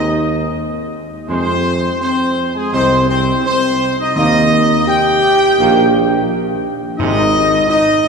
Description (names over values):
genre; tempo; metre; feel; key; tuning
classical; 84 BPM; 4/4; straight; unclear; A4 = 440 Hz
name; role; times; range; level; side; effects
clear trumpet section; melody; 0.0-8.1 s; Ab4 to G5; -16 LUFS; equal; none
bright trombone section; sustained chords; 0.0-7.2 s; C3 to Bb3; -26 LUFS; right 2 dB; none
dark French horn section; sustained chords; 0.0-8.1 s; Ab3 to G4; -17 LUFS; left 2 dB; none
mellow tuba; bass; 0.0-7.6 s; Ab1 to F2; -19 LUFS; right 2 dB; none
timpani; percussion; 4.2-8.0 s; Ab2 to Eb3; -24 LUFS; left 1 dB; none
room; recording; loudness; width
wet cathedral reverb, RT60 4.7 s; recorded in a church or concert hall; -12 LUFS; side -5 dB against mid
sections
0.0-8.1 A section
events
none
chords
0.0 N.C.; 1.3 Fm; 4.2 Eb; 7.0 Ab